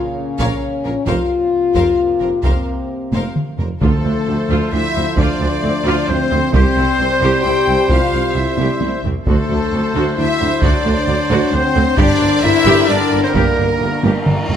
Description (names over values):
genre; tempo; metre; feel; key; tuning
cinematic, epic orchestral film score; 132 BPM; 3/4; straight; D minor from 3.8 s; A4 = 441 Hz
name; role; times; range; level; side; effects
mellow French horn section; sustained chords; 0.0-14.5 s; A3 to G4; -19 LUFS; left 6 dB; none
warm trombone section; sustained chords; 0.0-14.5 s; C3 to Bb3; -26 LUFS; right 4 dB; none
rich symphonic violin section; melody; 0.4-14.5 s; A4 to G5; -28 LUFS; left 2 dB; none
clear symphonic violin section; second line; 0.4-14.5 s; A4 to G5; -26 LUFS; left 3 dB; none
clear symphonic viola section; accompaniment; 0.4-14.6 s; Bb3 to C5; -24 LUFS; equal; none
mellow tuba; bass; 0.4-14.6 s; F1 to D2; -24 LUFS; right 4 dB; none
rich studio double bass section; bass; 0.4-14.6 s; F1 to D2; -24 LUFS; right 3 dB; none
rich symphonic cello section; bass; 0.4-14.6 s; C2 to Bb2; -23 LUFS; right 2 dB; none
taiko ensemble; drums; 0.4-14.6 s; none; -19 LUFS; equal; none
silver concert flute; second line; 3.8-14.5 s; A4 to G5; -25 LUFS; left 1 dB; none
clear trumpet; stabs; 3.8-14.5 s; Bb4 to C5; -23 LUFS; right 1 dB; none
timpani; percussion; 3.8-4.5 s; D3; -22 LUFS; equal; none
room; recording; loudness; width
moderate scoring stage reverb, RT60 1.9 s; none; -13 LUFS; side -9 dB against mid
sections
0.0-3.8 A section; 3.8-14.6 B section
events
drum fill 3.1-3.8, 8.6-9.3, 14.0-14.6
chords
0.0 Bbm; 1.1 Fsus4; 3.8 Dm7; 6.5 C; 9.3 D7; 12.0 Gm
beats
0.17 0.62 | 1.07 1.52 1.98 | 2.44 2.90 3.36 | 3.82 4.28 4.73 | 5.18 5.64 6.09 | 6.54 6.99 7.44 | 7.90 8.35 8.81 | 9.27 9.72 10.18 | 10.63 11.08 11.52 | 11.97 12.43 12.88 | 13.34 13.80 14.27